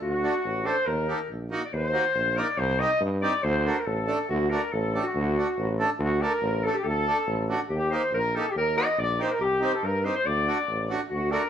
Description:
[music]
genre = klezmer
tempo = 141 BPM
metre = 2/4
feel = straight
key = D phrygian dominant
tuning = A4 = 441 Hz
[part]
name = breathy cornet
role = melody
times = 0.0-11.5 s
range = F#4 to Eb5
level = -28 LUFS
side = left 1 dB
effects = none
[part]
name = bright clarinet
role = second line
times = 0.0-11.5 s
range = F#4 to Eb5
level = -30 LUFS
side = left 2 dB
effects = none
[part]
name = warm tuba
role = bass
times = 0.0-11.4 s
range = A1 to G2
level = -29 LUFS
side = equal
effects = none
[part]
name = accordion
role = accompaniment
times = 0.2-11.4 s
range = A3 to Bb4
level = -30 LUFS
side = right 3 dB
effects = none
[sound]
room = moderate studio reverb, RT60 0.7 s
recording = band playing live in one room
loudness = -23 LUFS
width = side -9 dB against mid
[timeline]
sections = 0.0-4.3 A section; 4.3-11.1 B section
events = cornet solo 0.0-4.3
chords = 0.0 D; 0.9 Eb; 2.6 Cm; 3.4 D; 7.7 Eb; 9.4 Cm; 10.3 D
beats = | 0.02 0.45 | 0.88 1.30 | 1.73 2.16 | 2.59 3.01 | 3.44 3.87 | 4.29 4.72 | 5.15 5.57 | 6.00 6.43 | 6.85 7.28 | 7.71 8.13 | 8.56 8.98 | 9.41 9.83 | 10.26 10.68 | 11.11

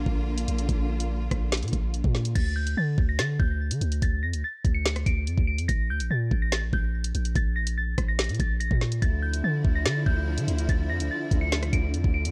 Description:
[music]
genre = hip hop, drill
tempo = 144 BPM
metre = 4/4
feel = half-time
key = D harmonic minor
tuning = A4 = 437 Hz
[part]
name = clear symphonic string section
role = sustained chords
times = 0.0-2.3, 9.0-12.3 s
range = D3 to F4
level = -36 LUFS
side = equal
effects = none
[part]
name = long sustained 808-style bass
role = bass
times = 0.0-12.3 s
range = A1 to D3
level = -29 LUFS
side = equal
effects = none
[part]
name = drill drum kit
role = drums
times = 0.1-12.3 s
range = crash cymbal, hi-hat, kick drum, rim click, snare drum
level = -29 LUFS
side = equal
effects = vintage 12-bit sampler grit
[part]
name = glassy synth bell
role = melody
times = 2.4-12.3 s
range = G6 to D7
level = -35 LUFS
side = equal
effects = chorus, low-pass filter, tape echo
[sound]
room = little or no reverb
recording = none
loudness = -26 LUFS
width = mono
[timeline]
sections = 0.0-2.4 A section; 2.4-12.3 B section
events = break 0.0-2.4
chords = 0.0 Bb; 2.4 D5; 5.7 N.C.; 9.0 Dmadd9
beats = 0.27 | 0.69 1.10 1.52 1.94 | 2.35 2.77 3.19 3.60 | 4.02 4.44 4.86 5.27 | 5.69 6.11 6.52 6.94 | 7.36 7.77 8.19 8.61 | 9.02 9.44 9.86 10.27 | 10.69 11.11 11.52 11.94

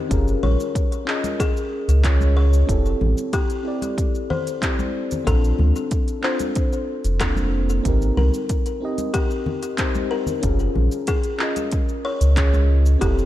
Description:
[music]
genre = sunset chillout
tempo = 93 BPM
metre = 4/4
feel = straight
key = unclear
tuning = A4 = 440 Hz
[part]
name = mellow FM electric piano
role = accompaniment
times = 0.0-13.3 s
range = Bb3 to Eb5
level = -26 LUFS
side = moving between left 5 dB and right 4 dB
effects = chorus, auto-pan, ping-pong delay
[part]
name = warm sub bass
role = bass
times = 0.1-13.3 s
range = F1 to D2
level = -17 LUFS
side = equal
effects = none
[part]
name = deep house drum kit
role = drums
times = 0.1-13.3 s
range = cabasa, handclaps, hi-hat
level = -29 LUFS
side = equal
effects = none
[part]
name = electronic kick drum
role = drums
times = 0.1-13.1 s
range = none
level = -23 LUFS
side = equal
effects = overdrive
[part]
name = buzzing kalimba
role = arpeggios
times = 0.4-13.3 s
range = G4 to Db5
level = -29 LUFS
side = left 4 dB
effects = ping-pong delay
[part]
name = congas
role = percussion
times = 0.4-12.7 s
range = none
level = -32 LUFS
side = left 2 dB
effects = none
[sound]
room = light reverb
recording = dark, warm production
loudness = -18 LUFS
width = side -14 dB against mid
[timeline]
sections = 0.0-13.3 A section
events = none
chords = 0.1 Gbmaj9 (rootless); 2.7 Fmaj9 (rootless); 5.3 Bbmaj9; 7.9 Abmaj9 (rootless); 10.4 Gbmaj9 (rootless)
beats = | 0.11 0.75 1.40 2.04 | 2.69 3.33 3.98 4.62 | 5.27 5.92 6.56 7.21 | 7.85 8.50 9.14 9.79 | 10.43 11.08 11.72 12.37 | 13.01

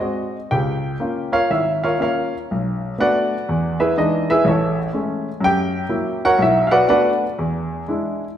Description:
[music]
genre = solo jazz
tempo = 122 BPM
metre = 4/4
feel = swing 66% on 8ths, rubato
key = unclear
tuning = A4 = 439 Hz
[part]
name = warm baby grand piano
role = solo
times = 0.0-8.2 s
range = G#1 to G5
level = -17 LUFS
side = equal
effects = none
[sound]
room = wet recital hall reverb, RT60 1.6 s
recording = recorded in a church or concert hall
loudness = -17 LUFS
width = side -10 dB against mid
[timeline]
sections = 0.0-8.4 A section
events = grand piano solo 0.0-8.4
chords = 0.0 G#7; 0.5 C#6; 2.5 Bm7; 3.5 E7; 4.5 Amaj7; 5.4 F#7; 6.4 Bm7; 7.4 E7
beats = 0.02 | 0.51 1.01 1.51 2.00 | 2.50 2.98 3.47 3.96 | 4.45 4.94 5.43 5.91 | 6.39 6.88 7.38 7.88

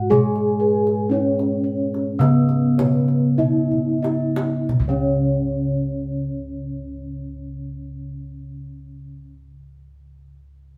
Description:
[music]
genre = Javanese gamelan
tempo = 44-62 BPM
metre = 4/4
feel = straight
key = unclear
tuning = A4 = 440 Hz
[part]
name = gamelan-type bronze metallophone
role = melody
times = 0.0-9.3 s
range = B3-25c to G#4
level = -27 LUFS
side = equal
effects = none
[part]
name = gamelan-type bronze metallophone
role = accompaniment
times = 0.0-9.3 s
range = C#3 to B3-25c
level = -27 LUFS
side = equal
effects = none
[part]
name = gamelan-type bronze metallophone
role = arpeggios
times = 0.0-9.3 s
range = B4-25c to G#5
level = -32 LUFS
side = equal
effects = none
[part]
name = gamelan-type bossed gongs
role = bass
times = 0.0-9.2 s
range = C#2 to G#4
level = -26 LUFS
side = equal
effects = none
[part]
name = gamelan-type bossed gongs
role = arpeggios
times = 0.1-9.3 s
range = B4-25c to E5-45c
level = -35 LUFS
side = equal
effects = none
[part]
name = kendang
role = percussion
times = 0.1-5.3 s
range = none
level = -28 LUFS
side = equal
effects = none
[sound]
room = moderate stone room reverb, RT60 1.0 s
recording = band playing live in one room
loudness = -20 LUFS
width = mono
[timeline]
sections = 0.0-4.7 A section; 4.7-10.1 B section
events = slowing down 0.0-4.7; drum fill 3.4-4.7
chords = none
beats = | 0.11 1.11 2.20 3.38 | 4.68 6.05 7.41 8.77

